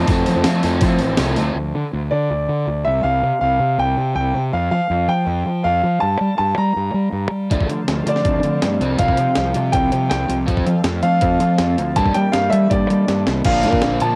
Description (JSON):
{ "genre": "indie rock", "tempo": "162 BPM", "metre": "4/4", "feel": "straight", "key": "unclear", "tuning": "A4 = 440 Hz", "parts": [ { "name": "bright upright piano", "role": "melody", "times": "0.0-14.2 s", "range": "D5 to Bb5", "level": "-23 LUFS", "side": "equal", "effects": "none" }, { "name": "phased analog pad", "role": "sustained chords", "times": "0.0-1.5, 7.5-13.4 s", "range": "F3 to C6", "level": "-35 LUFS", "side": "equal", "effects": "none" }, { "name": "crunchy overdriven guitar", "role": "riff", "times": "0.0-1.7, 7.5-14.2 s", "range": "F3 to F4", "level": "-26 LUFS", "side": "equal", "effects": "analog chorus" }, { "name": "electric guitar at the edge of break-up", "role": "riff", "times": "0.0-1.6, 7.5-14.2 s", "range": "G2 to A4", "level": "-28 LUFS", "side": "equal", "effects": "none" }, { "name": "fuzz fingered electric bass", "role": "bass", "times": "0.0-14.2 s", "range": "A1 to G3", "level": "-22 LUFS", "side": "equal", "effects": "overdrive" }, { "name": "breakbeat sampler-style drum kit", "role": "drums", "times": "0.1-1.5, 7.5-14.1 s", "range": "crash cymbal, hi-hat, kick drum, snare drum", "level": "-24 LUFS", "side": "equal", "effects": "cassette tape" } ], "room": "moderate small room reverb, RT60 0.5 s", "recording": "home recording on cassette", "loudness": "-18 LUFS", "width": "mono", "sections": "0.0-1.6 A section; 1.6-13.5 B section", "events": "kick and snare drop out 1.4; drum fill 13.1-13.5", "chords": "0.0 Fmaj7; 1.6 N.C.; 2.9 Csus4; 4.5 Fsus2; 6.0 Gmadd9; 7.5 Dm7; 8.8 Csus4; 10.5 F; 12.0 Gmadd9; 13.5 Bb" }